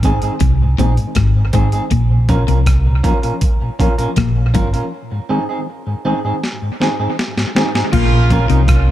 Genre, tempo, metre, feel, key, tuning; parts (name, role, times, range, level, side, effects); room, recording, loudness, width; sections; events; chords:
roots reggae; 80 BPM; 4/4; straight; Bb minor; A4 = 440 Hz
electric guitar at the edge of break-up; accompaniment; 0.0-8.6 s; C4 to Bb4; -22 LUFS; right 2 dB; tape echo
mellow tonewheel organ; accompaniment; 0.0-8.9 s; Ab2 to Db4; -22 LUFS; left 1 dB; chorus vibrato, analog delay
hollow-body short-scale fingered electric bass; bass; 0.0-8.9 s; G1 to C2; -14 LUFS; equal
breakbeat sampler-style drum kit; drums; 0.0-8.9 s; crash cymbal, hi-hat, kick drum, rim click, snare drum; -17 LUFS; equal; analog delay
clean electric guitar; riff; 0.4-8.7 s; G2 to C3; -20 LUFS; left 8 dB; spring reverb
warm horn section; second line; 7.9-8.9 s; Db3 to F4; -19 LUFS; right 2 dB; tape echo
little or no reverb; echo-heavy mix; -13 LUFS; side -13 dB against mid
0.0-7.9 A section
break 4.9-7.9; drum fill 6.4-7.9
0.0 Ab; 1.9 Bbm; 4.9 Ab; 7.9 Bbm